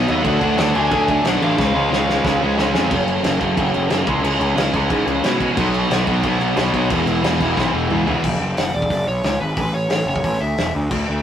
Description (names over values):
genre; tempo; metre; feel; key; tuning
punk rock; 180 BPM; 4/4; straight; F# dorian; A4 = 440 Hz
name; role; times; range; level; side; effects
biting overdriven guitar; melody; 0.0-2.5, 8.6-10.7 s; B4 to G#5; -23 LUFS; equal; none
distorted electric guitar; riff; 0.0-8.2 s; F#2 to E4; -24 LUFS; left 5 dB; distortion
distorted electric guitar; riff; 0.0-8.2 s; E2 to D4; -24 LUFS; right 6 dB; distortion
thick fuzz guitar; riff; 0.0-2.9, 5.6-8.2 s; E2 to D4; -22 LUFS; equal; distortion
fuzz picked electric bass; bass; 0.0-11.2 s; E1 to B2; -21 LUFS; equal; overdrive
loose indie drum kit; drums; 0.1-11.0 s; crash cymbal, hi-hat, kick drum, snare drum, toms; -23 LUFS; equal; none
room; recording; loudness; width
moderate stone room reverb, RT60 1.1 s; rough rehearsal-room recording, warm saturation; -16 LUFS; side -9 dB against mid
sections
0.0-2.9 A section; 2.9-8.2 B section; 8.2-11.2 C section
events
drum fill 1.6-2.9, 7.6-8.2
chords
0.2 D; 1.6 C#; 2.9 F#m; 4.1 C#m; 5.6 B; 6.9 E; 8.2 F#5; 9.6 A